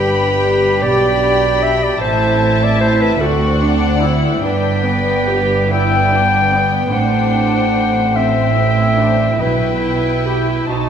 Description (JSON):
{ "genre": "classical, slow romantic movement for symphony orchestra", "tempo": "49 BPM (dotted quarters)", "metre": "6/8", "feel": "uneven beats, rubato", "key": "unclear", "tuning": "A4 = 440 Hz", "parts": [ { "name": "dark studio violin section", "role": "melody", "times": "0.0-10.9 s", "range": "F#5 to B5", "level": "-24 LUFS", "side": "left 3 dB", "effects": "none" }, { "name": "rich studio violin section", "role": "second line", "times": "0.0-10.9 s", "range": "B3 to G5", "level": "-23 LUFS", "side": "left 4 dB", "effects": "none" }, { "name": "warm clarinet", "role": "second line", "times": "0.0-10.9 s", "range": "E4 to G5", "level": "-17 LUFS", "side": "left 1 dB", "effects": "none" }, { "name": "warm studio viola section", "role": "accompaniment", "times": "0.0-10.9 s", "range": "B3 to G4", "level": "-20 LUFS", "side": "equal", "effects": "none" }, { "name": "dark studio cello section", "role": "bass", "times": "0.0-10.9 s", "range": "D2 to B2", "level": "-20 LUFS", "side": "right 3 dB", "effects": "none" }, { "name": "warm studio double bass section", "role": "bass", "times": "0.0-10.9 s", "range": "G1 to D2", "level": "-20 LUFS", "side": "right 3 dB", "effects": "none" }, { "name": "timpani", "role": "percussion", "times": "9.4-10.7 s", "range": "B2", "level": "-27 LUFS", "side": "left 2 dB", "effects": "none" } ], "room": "wet concert hall reverb, RT60 1.7 s", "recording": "none", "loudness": "-12 LUFS", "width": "side -8 dB against mid", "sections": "0.0-10.9 A section", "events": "none", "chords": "0.0 G; 2.0 Am; 3.2 D7; 4.4 G; 6.9 Am7; 9.4 Em/B" }